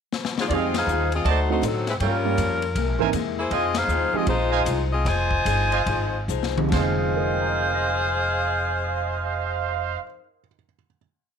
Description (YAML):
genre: jazz, big band swing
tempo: 135-160 BPM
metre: 4/4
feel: swing 64% on 8ths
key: F minor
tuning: A4 = 440 Hz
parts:
  - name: swinging big-band drum kit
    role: drums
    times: 0.1-6.9 s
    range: hi-hat, kick drum, ride cymbal, snare drum, toms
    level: -30 LUFS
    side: left 5 dB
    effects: none
  - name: warm saxophone section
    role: melody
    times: 0.4-10.0 s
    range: F#3 to Ab5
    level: -24 LUFS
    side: left 2 dB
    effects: none
  - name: picked old ladder-braced acoustic guitar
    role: accompaniment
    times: 0.5-10.3 s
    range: G2 to Ab4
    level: -32 LUFS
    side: left 12 dB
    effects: none
  - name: warm grand piano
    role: accompaniment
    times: 0.5-4.3, 6.6-11.0 s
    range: F2 to Bb6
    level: -28 LUFS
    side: right 13 dB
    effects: none
  - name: clear trumpet section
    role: stabs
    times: 0.5-10.0 s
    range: Ab4 to A5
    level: -28 LUFS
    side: right 12 dB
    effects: none
  - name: upright bass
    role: bass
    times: 0.5-9.9 s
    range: F1 to A2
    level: -26 LUFS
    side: equal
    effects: none
room: light reverb, small room reverb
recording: 1960s-style stereo with parts hard left and right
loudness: -21 LUFS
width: side -7 dB against mid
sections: 0.0-0.5 pickup bar; 0.5-6.7 A section; 6.7-10.3 final chord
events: drum fill 0.1-0.5, 6.3-6.7; band accent 0.7, 3.7; slowing down 3.5-6.7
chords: 0.5 Fm7; 1.2 D7b9; 2.0 Gm7b5; 2.8 C7alt; 3.5 Fm7